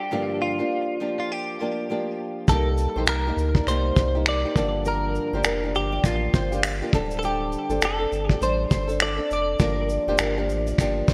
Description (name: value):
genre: acoustic pop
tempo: 101 BPM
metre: 4/4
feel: swing 60% on 16ths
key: G minor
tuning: A4 = 442 Hz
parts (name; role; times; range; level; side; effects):
- direct-recorded clean electric guitar; melody; 0.0-10.2 s; F4 to D5; -30 LUFS; equal; analog chorus, digital delay
- nylon-string guitar; accompaniment; 0.0-11.1 s; G2 to A4; -30 LUFS; equal; subtle chorus
- fingerpicked steel-string acoustic guitar; arpeggios; 2.5-11.1 s; A4 to D5; -36 LUFS; equal; ensemble chorus, digital delay
- warm sub bass; bass; 2.5-11.1 s; D1 to D2; -30 LUFS; equal; none
- cloth-damped thuddy drum kit; drums; 2.5-11.1 s; finger snaps, kick drum, shaker; -26 LUFS; equal; none
room: light reverb, small room reverb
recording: bright 1980s-style digital production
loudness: -24 LUFS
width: mono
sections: 0.0-2.5 A section; 2.5-11.1 B section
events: none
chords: 0.1 Gm7; 2.5 Cm7; 4.6 Gm7; 6.9 D7sus4; 9.6 Gm7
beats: | 0.12 0.71 1.30 1.90 | 2.49 3.08 3.68 4.27 | 4.86 5.46 6.05 6.64 | 7.23 7.83 8.42 9.01 | 9.60 10.20 10.79